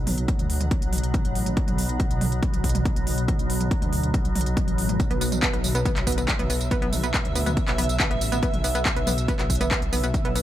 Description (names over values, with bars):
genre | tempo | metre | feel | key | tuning
driving peak-time techno | 140 BPM | 4/4 | straight | unclear | A4 = 440 Hz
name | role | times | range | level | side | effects
dark detuned saw bass | bass | 0.0-10.4 s | A1 to D2 | -27 LUFS | equal | tube saturation, sidechain pumping
swarming drone | drone | 0.0-10.4 s | B2 to F#3 | -30 LUFS | equal | built-in reverb, sidechain pumping
granular cloud pad | texture | 0.0-10.4 s | E5 to F#5 | -35 LUFS | right 2 dB | built-in reverb, sidechain pumping
techno drum kit | drums | 0.1-10.4 s | handclaps, hi-hat, tambourine, toms | -28 LUFS | right 1 dB | overdrive, sidechain pumping on hats, sidechain pumping on cymbals, sidechain pumping on toms, sidechain pumping on perc
electronic kick drum | drums | 0.3-10.2 s | none | -25 LUFS | equal | overdrive
analog pluck | riff | 5.1-10.4 s | B3 | -29 LUFS | equal | chorus, sidechain pumping, dub echo
room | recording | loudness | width
little or no reverb | none | -21 LUFS | side -13 dB against mid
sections
0.0-10.4 A section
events
fade-in on ambient pad 0.0-10.4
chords
0.0 B5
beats
0.28 0.71 1.14 | 1.57 2.00 2.43 2.85 | 3.28 3.71 4.14 4.57 | 5.00 5.43 5.86 6.28 | 6.71 7.14 7.57 8.00 | 8.43 8.86 9.28 9.71 | 10.14